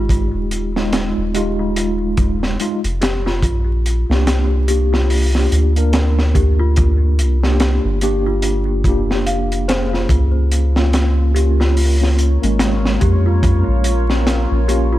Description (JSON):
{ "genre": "trip hop", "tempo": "72 BPM", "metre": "4/4", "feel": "swing 59% on 16ths", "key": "unclear", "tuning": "A4 = 439 Hz", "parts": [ { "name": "mellow tine electric piano", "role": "accompaniment", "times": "0.0-15.0 s", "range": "Ab3 to Bb4", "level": "-21 LUFS", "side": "equal", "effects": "fast stereo tremolo, tape echo" }, { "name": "worn celesta", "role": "arpeggios", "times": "0.0-15.0 s", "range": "F4 to F5", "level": "-25 LUFS", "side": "left 2 dB", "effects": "low-pass filter, ping-pong delay" }, { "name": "soft dub sub bass", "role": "bass", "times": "0.0-15.0 s", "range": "Eb1 to F2", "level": "-16 LUFS", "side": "equal", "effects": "none" }, { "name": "crunchy breakbeat drum kit", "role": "drums", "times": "0.1-14.9 s", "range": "hi-hat, kick drum, snare drum", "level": "-20 LUFS", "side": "equal", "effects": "none" }, { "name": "deep dark ambient pad", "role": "sustained chords", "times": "11.4-15.0 s", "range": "F4 to Db5", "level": "-26 LUFS", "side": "equal", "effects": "chorus, built-in reverb" } ], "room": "studio ambience", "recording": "vinyl crackle", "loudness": "-14 LUFS", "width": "side -14 dB against mid", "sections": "0.0-15.0 A section", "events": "filter sweep on celesta 0.0-15.0", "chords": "0.0 Fm7; 3.4 Bb6; 10.1 Db6", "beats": "| 0.10 0.93 1.76 2.60 | 3.43 4.26 5.10 5.93 | 6.76 7.60 8.43 9.26 | 10.10 10.93 11.76 12.60 | 13.43 14.26" }